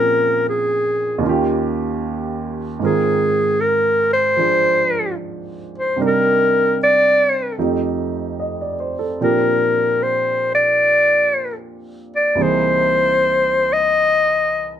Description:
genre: jazz ballad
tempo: 76 BPM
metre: 4/4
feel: swing 66% on 8ths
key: unclear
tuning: A4 = 440 Hz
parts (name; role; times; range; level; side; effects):
- clear clarinet; melody; 0.0-14.8 s; Ab4 to D#5; -15 LUFS; left 1 dB; none
- warm baby grand piano; accompaniment; 0.0-14.8 s; C2 to Eb5; -22 LUFS; right 4 dB; none
room: light reverb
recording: dark, warm production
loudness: -15 LUFS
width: side -9 dB against mid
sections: 0.0-14.8 A section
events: none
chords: 0.0 Bbm9; 1.2 Eb9; 2.8 Ab6; 6.0 Cm9; 7.6 F9; 9.2 Bb69; 12.4 C7alt

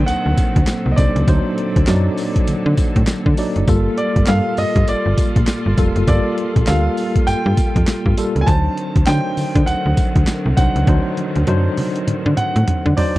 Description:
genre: R&B, new jack swing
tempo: 100 BPM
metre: 4/4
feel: swing 61% on 16ths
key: unclear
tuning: A4 = 440 Hz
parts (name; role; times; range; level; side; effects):
- warm concert grand piano; melody; 0.0-13.2 s; D5 to A5; -24 LUFS; right 1 dB; none
- tine electric piano; accompaniment; 0.0-13.2 s; F#3 to D5; -22 LUFS; left 1 dB; fast stereo tremolo
- rich studio string section; sustained chords; 0.0-13.2 s; Bb2 to A4; -26 LUFS; right 1 dB; none
- slap-like FM bass; bass; 0.0-13.2 s; F1 to D3; -17 LUFS; equal; none
- boom bap sampler-style drum kit; drums; 0.1-13.2 s; handclaps, hi-hat, kick drum, snare drum, tambourine, toms; -17 LUFS; equal; overdrive
room: little or no reverb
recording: dry, close 1970s-style studio recording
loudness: -14 LUFS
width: side -17 dB against mid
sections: 0.0-13.2 A section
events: drum fill 10.9-13.2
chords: 0.0 D7b9; 3.7 Gm9; 8.5 D7b9

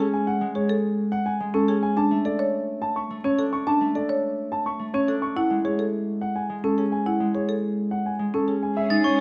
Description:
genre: classical, minimalist pattern music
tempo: 106 BPM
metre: 3/4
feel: straight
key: unclear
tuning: A4 = 440 Hz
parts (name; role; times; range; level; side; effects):
- dark grand piano; melody; 0.0-9.2 s; A4 to C#6; -30 LUFS; equal; none
- concert harp; accompaniment; 0.0-9.2 s; G#3 to D4; -30 LUFS; equal; none
- marimba with medium mallets; arpeggios; 0.0-9.1 s; C#4 to C#5; -28 LUFS; equal; none
- dark French horn; second line; 8.8-9.2 s; C#4; -30 LUFS; equal; none
- rich symphonic string section; sustained chords; 8.8-9.2 s; C#4 to G#4; -32 LUFS; equal; none
- glockenspiel with hard plastic mallets; arpeggios; 8.9-9.2 s; C#6 to A6; -26 LUFS; equal; none
room: moderate recital hall reverb, RT60 1.3 s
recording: dark, warm production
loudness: -24 LUFS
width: mono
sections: 0.0-8.8 A section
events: none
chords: 0.0 A; 2.0 D5; 5.4 A6

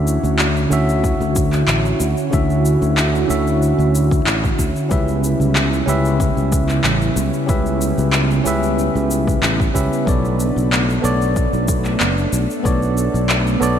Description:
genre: sunset chillout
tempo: 93 BPM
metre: 4/4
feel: swing 53% on 16ths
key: D major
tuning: A4 = 440 Hz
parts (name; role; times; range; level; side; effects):
- bell-like tine electric piano; accompaniment; 0.0-13.8 s; D3 to E5; -21 LUFS; equal; auto-pan, low-pass filter, ping-pong delay
- airy breathy pad; sustained chords; 0.0-13.8 s; C#3 to F#4; -22 LUFS; right 1 dB; chorus
- sustaining fretless electric bass; bass; 0.0-13.8 s; F#1 to D2; -19 LUFS; equal; none
- electronic shaker and handclaps; drums; 0.1-13.8 s; none; -23 LUFS; left 1 dB; overdrive, gated reverb
- electronic kick drum; drums; 1.0-12.8 s; none; -20 LUFS; equal; overdrive
room: moderate lush hall reverb, RT60 3.2 s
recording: bright 1980s-style digital production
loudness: -15 LUFS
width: side -9 dB against mid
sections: 0.0-13.8 A section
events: none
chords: 0.0 Dmaj9; 4.9 A9 (rootless); 10.1 Bm9

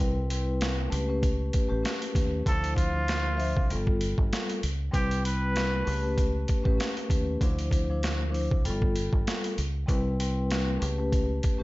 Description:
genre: hip hop, boom-bap hip-hop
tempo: 97 BPM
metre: 4/4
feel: swing 56% on 16ths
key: D dorian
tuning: A4 = 440 Hz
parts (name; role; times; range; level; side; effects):
- vibraphone with soft mallets; accompaniment; 0.0-11.6 s; F3 to E5; -31 LUFS; left 2 dB; cassette tape
- deep dub fingered electric bass; bass; 0.0-11.4 s; G1 to Eb2; -30 LUFS; equal; none
- boom bap sampler-style drum kit; drums; 0.3-11.6 s; hi-hat, kick drum, snare drum; -28 LUFS; equal; none
- trumpet with straight mute; melody; 2.5-6.3 s; F4 to B4; -32 LUFS; right 1 dB; ping-pong delay
room: little or no reverb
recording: nothing above 7.6 kHz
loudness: -25 LUFS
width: side -19 dB against mid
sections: 0.0-11.6 A section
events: none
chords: 0.0 Cmaj7; 0.9 A9/C#; 2.5 Dm9; 3.7 G9; 4.9 Cmaj7; 5.9 A9/C#; 7.4 Dm9; 8.6 G9; 9.9 Cmaj7; 10.8 A9/C#

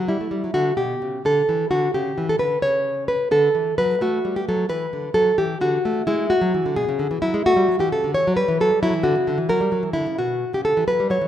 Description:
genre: classical, baroque-style dance for nylon-string guitar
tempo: 87 BPM (dotted quarters)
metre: 12/8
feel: rubato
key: D major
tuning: A4 = 437 Hz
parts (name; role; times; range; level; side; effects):
- nylon-string guitar; solo; 0.0-11.3 s; B2 to C#5; -18 LUFS; equal; none
room: moderate scoring stage reverb, RT60 2.0 s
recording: minimal, uncompressed stereo recording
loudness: -18 LUFS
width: side -10 dB against mid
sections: 0.0-11.3 A section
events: none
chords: 0.0 A7(no3); 0.5 D5; 1.9 C#7(b5, no3); 3.3 D; 6.1 E7; 7.4 A; 8.8 F#7; 10.2 B5

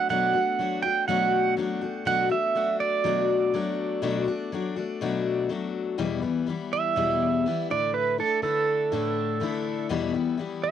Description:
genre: rock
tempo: 122 BPM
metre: 4/4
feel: straight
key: E minor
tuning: A4 = 440 Hz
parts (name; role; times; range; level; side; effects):
- pedal steel guitar; melody; 0.0-10.7 s; A4 to G5; -26 LUFS; right 6 dB; cassette tape, analog delay
- picked steel-string acoustic guitar; accompaniment; 0.0-10.7 s; E2 to F#4; -27 LUFS; left 6 dB; cassette tape
room: wet booth ambience, RT60 0.2 s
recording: home recording on cassette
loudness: -23 LUFS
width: side -9 dB against mid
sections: 0.0-6.0 A section; 6.0-10.7 B section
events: pedal steel guitar solo 6.0-10.7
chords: 0.0 Bm7; 6.0 Em; 7.7 Asus4; 9.9 Em

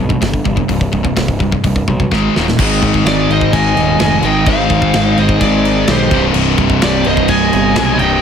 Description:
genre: heavy metal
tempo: 127 BPM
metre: 4/4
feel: straight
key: unclear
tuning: A4 = 441 Hz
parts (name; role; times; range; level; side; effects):
- distorted electric guitar; riff; 0.0-8.2 s; C2 to Ab3; -18 LUFS; left 10 dB; distortion
- sludgy distorted guitar; riff; 0.0-8.2 s; C2 to Ab3; -18 LUFS; right 9 dB; overdrive
- fuzz picked electric bass; bass; 0.0-8.2 s; C1 to B1; -17 LUFS; equal; overdrive
- tight metal drum kit; drums; 0.1-8.1 s; crash cymbal, hi-hat, kick drum, snare drum; -18 LUFS; equal; none
- sludgy distorted guitar; riff; 2.6-8.2 s; C2 to Ab3; -20 LUFS; equal; overdrive
- high-gain lead guitar; melody; 3.1-8.2 s; C5 to Ab5; -17 LUFS; equal; distortion
- high-gain lead guitar; second line; 3.1-8.2 s; G4 to Eb5; -22 LUFS; right 4 dB; distortion
room: small room ambience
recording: none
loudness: -10 LUFS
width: side -7 dB against mid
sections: 0.0-2.6 A section; 2.6-8.2 B section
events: drum fill 2.1-2.6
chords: 0.0 C5; 2.1 Ab5; 2.3 Eb5; 2.6 Ab; 6.1 Cm

